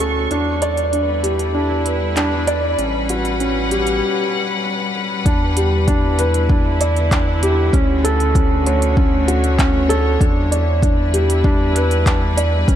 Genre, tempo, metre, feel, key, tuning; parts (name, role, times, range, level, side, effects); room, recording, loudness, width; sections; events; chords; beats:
piano and strings electronica; 97 BPM; 4/4; straight; E dorian; A4 = 436 Hz
clear studio string section; sustained chords; 0.0-12.8 s; D3 to C#6; -24 LUFS; left 1 dB; sidechain pumping
felt-muted upright piano; riff; 0.0-12.8 s; C#4 to D5; -19 LUFS; right 1 dB; tape echo
warm sub bass; bass; 0.0-12.8 s; A1 to E2; -20 LUFS; equal; sidechain pumping
organic electronic drum kit; drums; 0.0-12.8 s; handclaps, hi-hat, toms; -26 LUFS; right 1 dB; high-pass filter on hats, high-pass filter on snare, high-pass filter on toms, high-pass filter on room
electronic kick drum; drums; 5.3-12.8 s; -17 LUFS; equal; overdrive
light reverb, digital ambience; -15 LUFS; side -10 dB against mid
0.0-5.3 A section; 5.3-12.8 B section
build-up 0.0-5.3; drum fill 4.6-5.3; drop 5.3-12.8
0.3 Em7; 2.8 A13; 5.3 Em7; 7.7 Dmaj7; 10.2 Em7
| 0.31 0.93 1.55 2.17 | 2.79 3.40 4.02 4.64 | 5.26 5.88 6.50 7.12 | 7.73 8.35 8.97 9.59 | 10.21 10.83 11.45 12.06 | 12.68